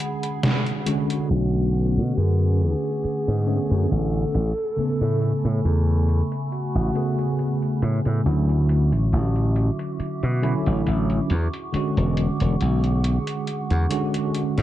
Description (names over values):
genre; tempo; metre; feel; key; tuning
vaporwave; 69 BPM; 4/4; swing 53% on 16ths; A major; A4 = 440 Hz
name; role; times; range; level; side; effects
warm alto saxophone; melody; 0.0-7.8 s; F#4 to A4; -30 LUFS; equal; vintage 12-bit sampler grit, tape echo
bell-like tine electric piano; accompaniment; 0.0-14.6 s; C#3 to A4; -25 LUFS; equal; medium stereo tremolo, lush chorus, tape echo
warbly tape-like pad; sustained chords; 0.0-14.6 s; A3 to D6; -34 LUFS; right 1 dB; chorus, built-in reverb, vintage 12-bit sampler grit
detuned 8-bit digital drum machine; drums; 0.0-14.6 s; hi-hat, snare drum; -27 LUFS; equal; overdrive
slap bass; bass; 1.3-14.6 s; E1 to B2; -20 LUFS; equal; none
room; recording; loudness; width
light reverb; dark, warm production, cassette tape, low-pass filter; -20 LUFS; side -13 dB against mid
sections
0.0-1.3 A section; 1.3-14.6 B section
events
break 0.0-1.3; band accent 0.4-0.9; filter sweep 1.3-14.6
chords
0.0 E13 (rootless); 1.3 Bm9; 4.3 Amaj9; 8.3 Dmaj9; 11.3 E13